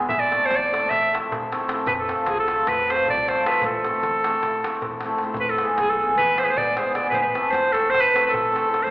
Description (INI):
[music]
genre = balkan folk, Balkan wedding band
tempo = 309 BPM (eighths)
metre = 9/8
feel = straight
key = A harmonic minor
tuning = A4 = 440 Hz
[part]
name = cimbalom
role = accompaniment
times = 0.0-8.8 s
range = G#3 to A4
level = -24 LUFS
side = equal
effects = none
[part]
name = darbuka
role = percussion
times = 0.0-8.9 s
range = none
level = -31 LUFS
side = equal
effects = none
[part]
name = breathy clarinet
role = melody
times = 0.1-8.9 s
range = G#4 to E5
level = -20 LUFS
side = right 1 dB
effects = none
[part]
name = upright bass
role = bass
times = 0.1-8.9 s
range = F1 to E2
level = -41 LUFS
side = equal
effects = none
[sound]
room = wet recital hall reverb, RT60 1.7 s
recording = recorded in a church or concert hall, AM radio sound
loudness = -19 LUFS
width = side -19 dB against mid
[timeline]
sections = 0.0-5.4 A section; 5.4-8.9 A section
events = none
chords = 0.1 Am; 1.9 F; 3.6 Am; 5.4 E; 7.1 Am